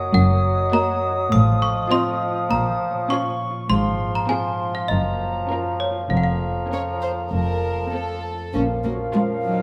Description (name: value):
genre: cinematic, playful, whimsical film cue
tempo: 100 BPM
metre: 4/4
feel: straight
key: Bb minor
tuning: A4 = 440 Hz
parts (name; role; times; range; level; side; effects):
- trough xylophone with plastic mallets; melody; 0.0-8.2 s; Db5 to Eb6; -30 LUFS; equal; none
- silver concert flute; second line; 0.0-9.6 s; F5 to Eb6; -31 LUFS; equal; none
- warm bassoon; accompaniment; 0.0-9.6 s; F3 to Gb3; -29 LUFS; equal; none
- concert harp; arpeggios; 0.0-9.6 s; F2 to F5; -30 LUFS; equal; none
- warm studio cello section; bass; 0.1-9.6 s; F2 to Db4; -25 LUFS; equal; none
- warm studio double bass section; bass; 0.1-9.0 s; F1 to Bb1; -27 LUFS; equal; none
- dark studio violin section; melody; 0.7-9.6 s; Ab4 to Eb5; -38 LUFS; equal; none
- warm studio violin section; second line; 0.7-9.6 s; F4 to Db5; -33 LUFS; equal; none
- warm studio viola section; accompaniment; 0.7-9.6 s; Bb3 to F4; -30 LUFS; equal; none
- warm French horn section; sustained chords; 8.5-9.6 s; Eb3 to Bb3; -32 LUFS; equal; none
- mellow clarinet; second line; 8.6-9.6 s; Bb4; -30 LUFS; equal; none
room: moderate scoring stage reverb, RT60 2.0 s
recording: none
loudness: -22 LUFS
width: mono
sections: 0.0-8.5 A section; 8.5-9.6 B section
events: none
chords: 0.0 Ebm/Gb; 1.3 F7/A; 2.5 Bbm; 3.7 Fm/Ab; 4.9 Gbmaj7; 6.1 Bbm/F; 7.3 F; 8.5 Bbm